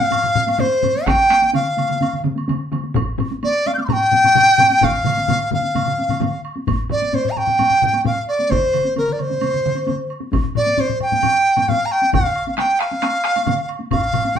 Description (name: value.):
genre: japanese traditional, taiko drum ensemble.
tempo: 130 BPM.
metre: 4/4.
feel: straight.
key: unclear.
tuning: A4 = 439 Hz.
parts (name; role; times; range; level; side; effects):
mellow dizi; melody; 0.0-14.4 s; Bb4 to G6; -16 LUFS; equal; none.
taiko ensemble; percussion; 0.0-14.4 s; none; -24 LUFS; left 3 dB; none.
taiko ensemble; percussion; 0.1-14.4 s; none; -26 LUFS; equal; none.
woodblock; percussion; 0.1-14.4 s; none; -32 LUFS; right 5 dB; none.
taiko ensemble; percussion; 1.1-13.6 s; none; -25 LUFS; right 1 dB; none.
taiko ensemble; percussion; 1.1-14.0 s; none; -23 LUFS; equal; none.
room: wet studio reverb, RT60 0.6 s.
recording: band playing live in one room.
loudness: -15 LUFS.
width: side -8 dB against mid.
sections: 0.0-6.7 A section; 6.7-14.4 B section.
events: speeding up 0.0-14.4.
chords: none.